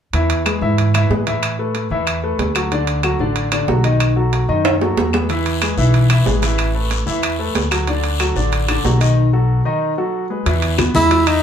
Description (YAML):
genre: Afro-Cuban jazz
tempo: 186 BPM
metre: 4/4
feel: straight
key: E major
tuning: A4 = 439 Hz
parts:
  - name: clear grand piano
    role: accompaniment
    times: 0.1-11.4 s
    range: D3 to E5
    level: -20 LUFS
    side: left 1 dB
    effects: none
  - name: upright bass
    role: bass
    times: 0.1-11.4 s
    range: A1 to A2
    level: -18 LUFS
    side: equal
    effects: none
  - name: timbales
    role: percussion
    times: 0.1-11.4 s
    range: none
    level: -22 LUFS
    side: right 5 dB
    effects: none
  - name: claves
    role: percussion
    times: 0.5-11.4 s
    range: none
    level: -27 LUFS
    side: left 4 dB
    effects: none
  - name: guiro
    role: percussion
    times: 5.3-11.4 s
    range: none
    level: -29 LUFS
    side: left 6 dB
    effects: none
  - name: bongos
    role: percussion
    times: 10.5-11.3 s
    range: none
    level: -24 LUFS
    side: left 1 dB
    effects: none
  - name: congas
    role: percussion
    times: 10.5-11.4 s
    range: none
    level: -24 LUFS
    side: left 1 dB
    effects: none
  - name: warm tenor saxophone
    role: melody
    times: 11.0-11.4 s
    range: D#4 to E4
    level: -14 LUFS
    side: right 1 dB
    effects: none
  - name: breathy tenor saxophone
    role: second line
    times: 11.0-11.4 s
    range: D#4 to E4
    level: -18 LUFS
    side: right 1 dB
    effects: none
room: wet club reverb, RT60 0.6 s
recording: heard from further back in the room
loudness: -15 LUFS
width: side -8 dB against mid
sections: 0.1-10.5 A section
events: drum fill 4.6-5.3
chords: 0.1 E; 1.4 Asus2; 2.7 D; 4.0 B7; 5.3 E; 6.6 Asus2; 7.9 D; 9.2 B7; 10.5 Emaj7